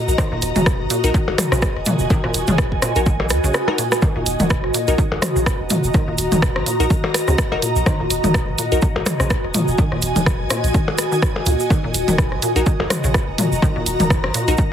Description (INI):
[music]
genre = minimal techno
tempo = 125 BPM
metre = 4/4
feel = swing 56% on 16ths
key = Eb minor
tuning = A4 = 440 Hz
[part]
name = ethereal airy pad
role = texture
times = 0.0-14.7 s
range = Gb4 to Bb5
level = -23 LUFS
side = equal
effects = ensemble chorus, built-in reverb, phaser, sidechain pumping
[part]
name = punchy sub bass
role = bass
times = 0.1-14.5 s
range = Eb1 to Eb2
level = -23 LUFS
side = equal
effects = tube saturation, sidechain pumping
[part]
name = egg shaker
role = percussion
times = 0.1-14.7 s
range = none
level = -28 LUFS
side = right 5 dB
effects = none
[part]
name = resonant blip pluck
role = riff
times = 0.2-14.6 s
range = Bb2 to Eb3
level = -26 LUFS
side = equal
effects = chorus, cassette tape, sidechain pumping, tape echo
[part]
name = electronic kick drum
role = drums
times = 0.2-14.7 s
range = none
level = -19 LUFS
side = equal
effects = none
[part]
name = minimal click drum kit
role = percussion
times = 0.2-14.3 s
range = percussion blips, rim click, toms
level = -23 LUFS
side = left 2 dB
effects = ping-pong delay
[part]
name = house drum kit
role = drums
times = 0.4-14.6 s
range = hi-hat, rim click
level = -24 LUFS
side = right 1 dB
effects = none
[part]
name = wavetable chord stab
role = stabs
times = 1.0-8.8, 12.6-14.5 s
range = Eb4 to Bb4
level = -24 LUFS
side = left 4 dB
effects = ping-pong delay
[sound]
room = light reverb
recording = heavily compressed radio sound, multiband compression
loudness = -16 LUFS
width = side -9 dB against mid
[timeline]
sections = 0.0-14.7 A section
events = drum fill 3.5-4.0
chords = 0.0 Ebm